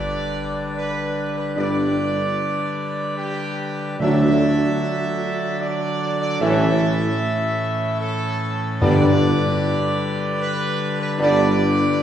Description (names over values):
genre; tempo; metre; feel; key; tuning
classical; 75 BPM; 3/4; straight; G major; A4 = 439 Hz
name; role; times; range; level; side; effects
dark trumpet section; melody; 0.0-12.0 s; G4 to E5; -25 LUFS; right 2 dB; none
pipe organ, full organ; sustained chords; 0.0-12.0 s; A2 to B4; -24 LUFS; left 1 dB; none
mellow French horn section; sustained chords; 1.6-11.5 s; A3 to D4; -25 LUFS; equal; none
mellow trombone section; sustained chords; 1.6-11.5 s; G2 to G3; -27 LUFS; right 2 dB; none
warm tuba; bass; 1.6-11.9 s; G1 to D2; -22 LUFS; right 1 dB; none
timpani; percussion; 4.0-5.2, 8.8-10.0 s; G2 to D3; -24 LUFS; left 1 dB; none
room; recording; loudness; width
wet scoring stage reverb, RT60 1.9 s; heard from further back in the room; -18 LUFS; side -9 dB against mid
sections
0.0-12.0 A section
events
none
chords
0.0 G; 4.0 D; 6.4 A; 8.8 G